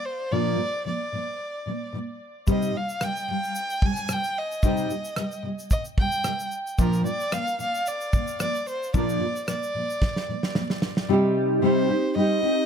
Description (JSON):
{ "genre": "acoustic pop", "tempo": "111 BPM", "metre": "4/4", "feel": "swing 55% on 16ths", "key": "C minor", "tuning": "A4 = 441 Hz", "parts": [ { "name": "warm violin", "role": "melody", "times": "0.0-12.7 s", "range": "Bb4 to Ab5", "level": "-28 LUFS", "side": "equal", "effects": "tape echo" }, { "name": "nylon-string guitar", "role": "accompaniment", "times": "0.3-12.7 s", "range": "Bb2 to C5", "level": "-25 LUFS", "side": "equal", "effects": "double-tracked left and right" }, { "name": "natural country drum kit", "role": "drums", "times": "2.5-11.1 s", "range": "kick drum, rim click, shaker, snare drum", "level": "-26 LUFS", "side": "equal", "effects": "none" } ], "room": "light reverb", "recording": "none", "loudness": "-23 LUFS", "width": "side -7 dB against mid", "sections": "0.0-11.1 A section; 11.1-12.7 B section", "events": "drum fill 10.0-11.1", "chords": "0.0 Bb; 2.5 Cm; 6.8 Bb; 11.1 Cm" }